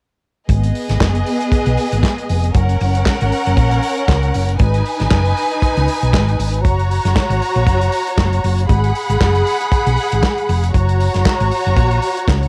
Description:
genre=disco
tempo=117 BPM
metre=4/4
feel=swing 56% on 16ths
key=G# minor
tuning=A4 = 440 Hz
part: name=rich studio string section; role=second line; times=0.5-12.5 s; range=B3 to B5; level=-21 LUFS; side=equal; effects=cassette tape
part: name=hollow-body short-scale fingered electric bass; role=bass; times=0.5-12.5 s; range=E#1 to C#2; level=-18 LUFS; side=equal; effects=transformer saturation
part: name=warm soul drum kit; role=drums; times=0.5-12.5 s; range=handclaps, hi-hat, kick drum, snare drum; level=-21 LUFS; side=equal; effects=cassette tape
room=little or no reverb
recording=home recording on cassette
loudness=-16 LUFS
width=mono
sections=0.5-12.5 A section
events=none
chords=0.5 G#m7; 2.5 F#; 4.6 G#m; 6.7 F#; 8.7 G#m7; 10.7 F#

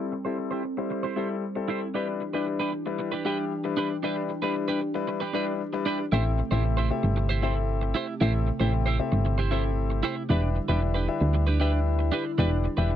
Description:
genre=pop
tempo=115 BPM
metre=4/4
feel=straight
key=A minor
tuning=A4 = 444 Hz
part: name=warm concert grand piano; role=accompaniment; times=0.0-13.0 s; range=G3 to E5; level=-30 LUFS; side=left 8 dB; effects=low-pass filter
part: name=chorused pulse-width pad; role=sustained chords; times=0.0-13.0 s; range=C3 to A4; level=-33 LUFS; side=right 1 dB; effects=wide subtle chorus, low-pass filter
part: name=twelve-string electric guitar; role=riff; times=0.0-12.9 s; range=D4 to C5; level=-30 LUFS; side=right 6 dB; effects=lush chorus, low-pass filter
part: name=solid FM bass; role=bass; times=6.1-13.0 s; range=E1 to D2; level=-24 LUFS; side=equal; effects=none
room=little or no reverb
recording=dry, close 1970s-style studio recording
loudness=-24 LUFS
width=side -11 dB against mid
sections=0.0-6.1 A section; 6.1-13.0 B section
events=build-up 0.0-6.1; filter sweep 0.0-6.1; drop 6.1-13.0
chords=0.0 Am7; 2.0 Em7; 6.1 Am7; 10.3 Em7

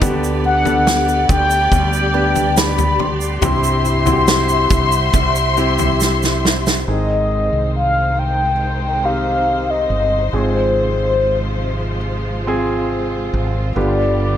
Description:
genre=pop ballad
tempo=70 BPM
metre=4/4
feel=straight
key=unclear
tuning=A4 = 440 Hz
part: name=warm concert grand piano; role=accompaniment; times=0.0-14.4 s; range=G2 to A4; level=-22 LUFS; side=equal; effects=none
part: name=warm studio string section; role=sustained chords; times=0.0-14.4 s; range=C3 to C6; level=-23 LUFS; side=left 1 dB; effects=none
part: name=flamenco guitar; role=arpeggios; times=0.0-7.5 s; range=C3 to G4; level=-27 LUFS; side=left 4 dB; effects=none
part: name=mellow fretless electric bass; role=bass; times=0.0-14.4 s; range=G1 to D2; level=-20 LUFS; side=right 1 dB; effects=none
part: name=loose indie drum kit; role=drums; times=0.0-6.9 s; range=kick drum, snare drum, toms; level=-18 LUFS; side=equal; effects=none
part: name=tube shaker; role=percussion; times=0.0-6.9 s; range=none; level=-29 LUFS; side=right 10 dB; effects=none
part: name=mellow horn-like synth lead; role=melody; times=0.4-14.4 s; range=C5 to C6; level=-18 LUFS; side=left 2 dB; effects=chorus
room=studio ambience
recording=none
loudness=-14 LUFS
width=side -10 dB against mid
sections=0.0-6.9 A section; 6.9-14.4 B section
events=drum fill 6.0-6.9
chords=0.0 G/D; 3.4 C; 6.9 Ab; 10.3 Fm/Ab; 13.8 G7

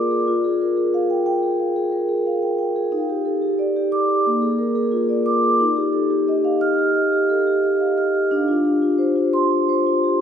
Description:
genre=classical, contemporary piece for solo vibraphone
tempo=90 BPM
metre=4/4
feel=rubato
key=unclear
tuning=A4 = 442 Hz
part: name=vibraphone with soft mallets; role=solo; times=0.0-10.2 s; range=Bb3 to F6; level=-17 LUFS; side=equal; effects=none
room=wet concert hall reverb, RT60 2.4 s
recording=heard from further back in the room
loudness=-17 LUFS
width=side -8 dB against mid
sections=0.0-10.2 A section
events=none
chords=0.3 Fmadd9; 2.9 Ebmaj7; 4.3 Bb7; 5.6 Ebadd9; 8.3 Dm7

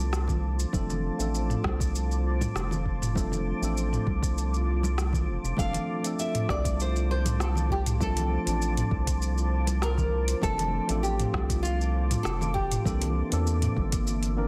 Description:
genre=sunset chillout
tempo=99 BPM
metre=4/4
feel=straight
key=F major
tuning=A4 = 441 Hz
part: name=tine electric piano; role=accompaniment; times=0.0-14.5 s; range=E3 to A5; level=-36 LUFS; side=equal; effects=low-pass filter, tape echo
part: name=shimmering ambient pad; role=sustained chords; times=0.0-14.5 s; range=Bb3 to D6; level=-39 LUFS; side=equal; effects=chorus, built-in reverb, phaser
part: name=round analog bass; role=bass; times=0.0-14.5 s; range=F1 to E2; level=-30 LUFS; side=equal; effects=none
part: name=smooth R&B drum kit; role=drums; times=0.1-14.3 s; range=hi-hat, rim click, shaker, toms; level=-36 LUFS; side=equal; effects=soft clipping on snare
part: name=electronic kick drum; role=drums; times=0.3-14.0 s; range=none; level=-33 LUFS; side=equal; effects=none
part: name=congas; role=percussion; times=0.3-13.9 s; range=none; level=-39 LUFS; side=equal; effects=none
part: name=nylon-string guitar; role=melody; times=5.6-14.5 s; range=F4 to F5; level=-35 LUFS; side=equal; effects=tape echo
room=moderate recital hall reverb, RT60 1.6 s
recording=dense, heavily limited modern master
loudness=-27 LUFS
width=mono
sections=0.0-14.5 A section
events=filter sweep on tine electric piano 0.0-14.5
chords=0.0 F6; 12.9 C13

